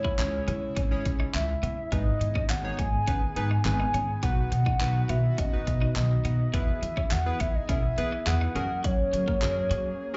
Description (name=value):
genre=dance-pop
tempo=104 BPM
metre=4/4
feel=straight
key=B major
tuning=A4 = 440 Hz
part: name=hollow clarinet-like synth lead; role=melody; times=0.0-10.2 s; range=C#5 to G#5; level=-34 LUFS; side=equal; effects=chorus, tape echo, plate reverb, slapback echo
part: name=airy breathy pad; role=sustained chords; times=0.0-10.2 s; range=C#3 to G#4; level=-41 LUFS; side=equal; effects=chorus, sidechain pumping, plate reverb
part: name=twelve-string electric guitar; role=riff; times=0.0-9.8 s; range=F#3 to E4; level=-40 LUFS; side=equal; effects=analog chorus, slapback echo
part: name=upright bass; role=bass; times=0.0-9.9 s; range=F#1 to F#3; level=-31 LUFS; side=equal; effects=sidechain pumping
part: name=pop drum kit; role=drums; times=0.0-9.8 s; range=handclaps, hi-hat, kick drum, snare drum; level=-32 LUFS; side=equal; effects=none
part: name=warm analog keys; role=accompaniment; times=0.2-10.2 s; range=B3 to C#5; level=-39 LUFS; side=equal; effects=chorus, sidechain pumping, plate reverb, slapback echo
room=little or no reverb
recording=live gig heard through the venue's PA, club reverb, nothing above 7.8 kHz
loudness=-27 LUFS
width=mono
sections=0.0-10.2 A section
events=break 10.0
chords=0.0 C#m; 1.9 G#m; 4.2 B; 6.5 E; 8.6 F#add9